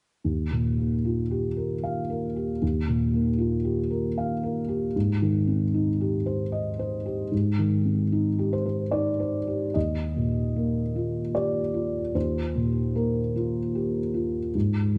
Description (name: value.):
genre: classical.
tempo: 75 BPM.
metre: 3/4.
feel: rubato.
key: Eb major.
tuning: A4 = 438 Hz.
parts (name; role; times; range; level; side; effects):
felt-muted upright piano; accompaniment; 0.2-15.0 s; Eb2 to F5; -26 LUFS; equal; none.
room: wet recital hall reverb, RT60 1.7 s.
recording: nothing above 10.9 kHz.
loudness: -26 LUFS.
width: mono.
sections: 0.2-9.7 A section; 9.7-15.0 B section.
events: none.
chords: 0.2 Ebadd9; 5.0 Abmaj7; 9.7 Ebadd9.